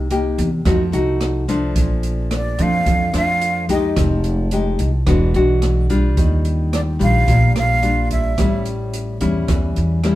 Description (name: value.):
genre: bossa nova.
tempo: 109 BPM.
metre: 4/4.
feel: straight.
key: unclear.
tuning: A4 = 440 Hz.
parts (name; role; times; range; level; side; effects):
nylon-string guitar; accompaniment; 0.0-10.2 s; F2 to G4; -20 LUFS; left 2 dB; none.
upright bass; bass; 0.0-10.2 s; E1 to F2; -19 LUFS; equal; none.
open jazz drum kit; drums; 0.1-10.2 s; hi-hat, kick drum, rim click; -22 LUFS; right 1 dB; none.
breathy jazz flute; melody; 2.4-8.6 s; D5 to F5; -20 LUFS; right 2 dB; none.
room: moderate studio reverb, RT60 0.8 s.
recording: heard from further back in the room.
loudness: -15 LUFS.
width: side -15 dB against mid.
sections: 0.0-10.2 A section.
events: none.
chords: 0.0 Cm7; 0.6 F7b9; 1.8 Bbmaj7; 4.0 Fm9; 5.1 E9; 6.2 Ebmaj9; 8.4 A7.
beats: 0.10 0.65 1.20 | 1.75 2.31 2.86 3.41 | 3.96 4.52 5.07 5.62 | 6.17 6.73 7.28 7.83 | 8.38 8.94 9.49 10.04.